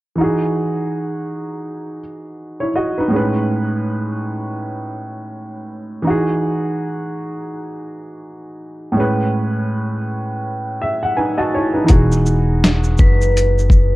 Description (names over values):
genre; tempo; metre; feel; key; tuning
lo-fi hip hop; 82 BPM; 4/4; swing 61% on 16ths; E major; A4 = 438 Hz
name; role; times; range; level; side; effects
warm upright piano; accompaniment; 0.2-14.0 s; A2 to A5; -19 LUFS; right 1 dB; cassette tape, low-pass filter
upright bass; bass; 11.9-13.9 s; E1 to F#1; -16 LUFS; equal; none
lo-fi sampler-style drum kit; drums; 11.9-13.9 s; hi-hat, kick drum, shaker, snare drum; -12 LUFS; equal; overdrive
vibraphone with hard mallets; melody; 13.0-14.0 s; B4; -20 LUFS; equal; low-pass filter
room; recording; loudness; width
light reverb, small room reverb; dark, warm production; -16 LUFS; side -18 dB against mid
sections
0.2-11.9 A section; 11.9-14.0 B section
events
upright piano fill 10.4-11.9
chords
0.2 Emaj9; 3.1 Amaj9; 6.0 Emaj9; 9.0 Amaj9; 11.9 Emaj9